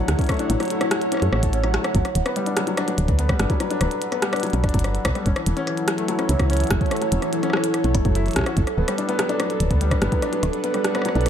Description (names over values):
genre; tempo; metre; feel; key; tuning
IDM; 145 BPM; 4/4; straight; G lydian; A4 = 439 Hz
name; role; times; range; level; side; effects
warbly tape-like pad; sustained chords; 0.0-11.3 s; D3 to F#5; -26 LUFS; right 2 dB; chorus, built-in reverb, phaser
felt-muted upright piano; arpeggios; 0.0-11.3 s; E3 to A4; -25 LUFS; left 4 dB; ping-pong delay
woody FM bass; bass; 0.0-11.3 s; D1 to F#2; -21 LUFS; equal; none
glitchy drum kit; drums; 0.1-11.3 s; hi-hat, rim click; -27 LUFS; equal; overdrive, ping-pong delay
electronic kick drum; drums; 0.2-10.2 s; none; -23 LUFS; equal; overdrive
room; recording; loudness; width
light reverb, digital ambience; none; -19 LUFS; side -9 dB against mid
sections
0.0-11.3 A section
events
kick drops out 1.5-1.9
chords
0.0 Dmaj7; 1.9 Gmaj7; 5.3 F#m7; 8.6 Gmaj7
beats
| 0.29 0.71 1.12 1.53 | 1.95 2.36 2.77 3.19 | 3.60 4.02 4.43 4.84 | 5.26 5.67 6.08 6.50 | 6.91 7.33 7.74 8.15 | 8.57 8.98 9.40 9.81 | 10.22 10.64 11.05